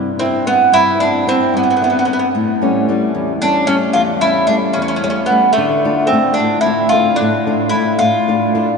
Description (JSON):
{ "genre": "italian folk, Italian serenade", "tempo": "74 BPM (dotted quarters)", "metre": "6/8", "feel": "straight", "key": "unclear", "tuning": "A4 = 440 Hz", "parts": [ { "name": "flamenco guitar", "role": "accompaniment", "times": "0.0-8.8 s", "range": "E2 to F4", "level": "-16 LUFS", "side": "left 2 dB", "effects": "none" }, { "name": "mandolin", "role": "melody", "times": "0.2-8.8 s", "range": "A3 to F4", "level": "-14 LUFS", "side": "right 1 dB", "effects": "none" } ], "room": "wet cathedral reverb, RT60 5.8 s", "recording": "recorded in a church or concert hall, nothing above 10.6 kHz", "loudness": "-12 LUFS", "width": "side -5 dB against mid", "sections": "0.0-8.8 A section", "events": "none", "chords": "0.0 Cmaj7; 2.3 A7; 5.6 Dm", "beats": "| 0.74 1.55 | 2.35 3.15 | 3.95 4.75 | 5.57 6.38 | 7.20 8.01" }